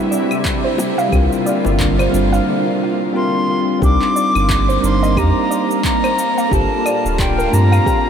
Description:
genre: sunset chillout.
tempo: 89 BPM.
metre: 4/4.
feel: swing 57% on 16ths.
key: unclear.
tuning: A4 = 440 Hz.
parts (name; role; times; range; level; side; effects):
bell-like tine electric piano; accompaniment; 0.0-8.1 s; G3 to C5; -20 LUFS; moving between left 5 dB and right 5 dB; auto-pan, ping-pong delay.
shimmering ambient pad; sustained chords; 0.0-8.1 s; Bb2 to F4; -21 LUFS; equal; chorus, built-in reverb.
soft round pluck; arpeggios; 0.1-8.0 s; G4 to F5; -23 LUFS; right 1 dB; lush chorus, cassette tape, ping-pong delay.
electronic cabasa, claves and handclaps; drums; 0.1-8.0 s; none; -27 LUFS; left 1 dB; none.
electronic kick drum; drums; 0.4-8.0 s; none; -21 LUFS; equal; none.
bongos; percussion; 0.8-1.8 s; none; barely audible; none; none.
warm sub bass; bass; 1.1-7.8 s; D1 to G2; -16 LUFS; equal; none.
bright reedy baroque flute; melody; 3.2-8.1 s; G5 to D6; -19 LUFS; equal; tape echo.
room: wet huge ambient reverb, RT60 7.3 s.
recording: dreamy mix soaked in reverb.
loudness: -13 LUFS.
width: side -8 dB against mid.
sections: 0.0-3.8 A section; 3.8-8.1 B section.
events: break 2.5-3.8.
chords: 0.0 D9sus4; 0.8 C9sus4; 3.8 Cm9; 6.2 Gm9.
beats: 0.45 | 1.12 1.80 2.47 3.15 | 3.82 4.50 5.17 5.84 | 6.52 7.19 7.87.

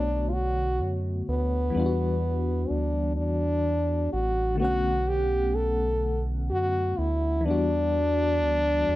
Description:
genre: slow six-eight R&B.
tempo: 42 BPM (dotted quarters).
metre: 6/8.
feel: straight.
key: E dorian.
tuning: A4 = 439 Hz.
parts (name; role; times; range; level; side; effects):
mellow French horn; melody; 0.0-9.0 s; B3 to A4; -26 LUFS; equal; slapback echo.
FM electric piano with tremolo; accompaniment; 0.0-9.0 s; D3 to F#5; -31 LUFS; left 3 dB; none.
round analog bass; bass; 0.0-9.0 s; A1 to F#2; -28 LUFS; right 1 dB; none.
room: light reverb, small room ambience.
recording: none.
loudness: -24 LUFS.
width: side -16 dB against mid.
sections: 0.0-9.0 A section.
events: none.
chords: 0.0 Bm9; 1.7 Em9; 4.6 Bm9; 7.5 Em9.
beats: 0.31 | 1.74 3.17 | 4.60 6.02 | 7.45 8.88.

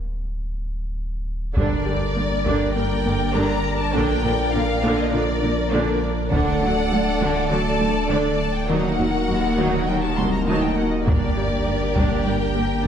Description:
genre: cinematic, hybrid orchestral and electronic film score.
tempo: 101 BPM.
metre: 4/4.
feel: straight.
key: G harmonic minor.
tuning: A4 = 440 Hz.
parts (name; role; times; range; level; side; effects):
punchy sub bass; bass; 0.0-12.9 s; D1 to Bb1; -27 LUFS; equal; none.
warm analog pad; sustained chords; 1.5-12.9 s; F3 to D5; -26 LUFS; right 2 dB; chorus.
warm symphonic violin section; melody; 1.6-12.9 s; D5 to C6; -27 LUFS; left 3 dB; none.
rich symphonic violin section; second line; 1.6-12.9 s; Gb4 to D5; -29 LUFS; left 2 dB; none.
rich symphonic viola section; accompaniment; 1.6-12.9 s; D3 to Eb4; -26 LUFS; right 2 dB; none.
thumb-piano-like synth pluck; arpeggios; 1.6-12.7 s; D3 to Bb4; -29 LUFS; left 3 dB; chorus, tape echo.
rich symphonic cello section; bass; 1.6-12.6 s; C2 to Bb2; -28 LUFS; right 1 dB; none.
taiko ensemble; drums; 1.6-2.7, 6.3-7.5, 11.1-12.5 s; none; -24 LUFS; equal; none.
room: wet scoring stage reverb, RT60 1.8 s.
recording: heard from further back in the room.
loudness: -19 LUFS.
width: side -8 dB against mid.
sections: 0.0-1.6 A section; 1.6-12.9 B section.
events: break 0.0-1.6.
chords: 0.0 N.C.; 1.6 Gm; 3.9 Bb; 6.3 D; 8.7 Ebm; 11.1 Gm.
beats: 0.38 0.97 | 1.56 2.16 2.75 3.35 | 3.94 4.53 5.13 5.72 | 6.32 6.91 7.50 8.10 | 8.69 9.29 9.88 10.47 | 11.07 11.66 12.26 12.85.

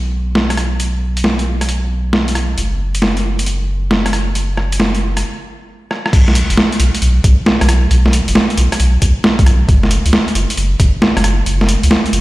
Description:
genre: UK garage, two-step garage.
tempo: 135 BPM.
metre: 4/4.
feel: swing 67% on 16ths.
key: unclear.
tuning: A4 = 439 Hz.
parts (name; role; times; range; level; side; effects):
saturated sub bass; bass; 0.0-12.2 s; F#1 to C#2; -14 LUFS; equal; none.
boom bap sampler-style drum kit; drums; 0.4-12.2 s; crash cymbal, hi-hat, rim click, snare drum; -15 LUFS; equal; overdrive.
electronic kick drum; drums; 6.1-10.9 s; none; -10 LUFS; equal; overdrive.
room: light reverb, digital ambience.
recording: played on a big sound system in a bare room, stone room reverb.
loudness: -12 LUFS.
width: side -18 dB against mid.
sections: 0.0-6.1 A section; 6.1-12.2 B section.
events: stop 5.2-6.1; drum fill 5.9; drop 6.1-12.2.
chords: none.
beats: 0.35 | 0.80 1.24 1.69 2.13 | 2.58 3.02 3.46 3.91 | 4.35 4.80 5.24 5.69 | 6.13 6.58 7.02 7.46 | 7.91 8.35 8.80 9.24 | 9.69 10.13 10.58 11.02 | 11.46 11.91.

